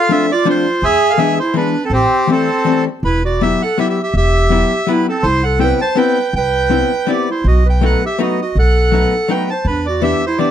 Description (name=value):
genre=musette waltz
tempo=164 BPM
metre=3/4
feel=swing 55% on 8ths, rubato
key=A minor, E minor from 3.0 s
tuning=A4 = 440 Hz
part: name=bandoneon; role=melody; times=0.0-10.5 s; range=C4 to A5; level=-17 LUFS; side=right 1 dB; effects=none
part: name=clear clarinet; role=second line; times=0.0-10.5 s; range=C4 to C5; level=-19 LUFS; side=right 3 dB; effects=none
part: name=archtop guitar, miked and amplified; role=accompaniment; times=0.1-10.5 s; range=E3 to E4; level=-17 LUFS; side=left 5 dB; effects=none
part: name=upright bass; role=bass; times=0.8-10.1 s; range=E1 to E2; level=-16 LUFS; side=equal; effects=none
room=moderate studio ambience, RT60 0.5 s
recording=dark, warm production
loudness=-12 LUFS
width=side -10 dB against mid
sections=0.0-3.0 A section; 3.0-10.5 B section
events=none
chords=0.0 Dm7; 0.8 E7; 1.9 Am7; 3.0 Emadd9; 5.2 Cmaj7; 7.5 B7; 9.7 Em7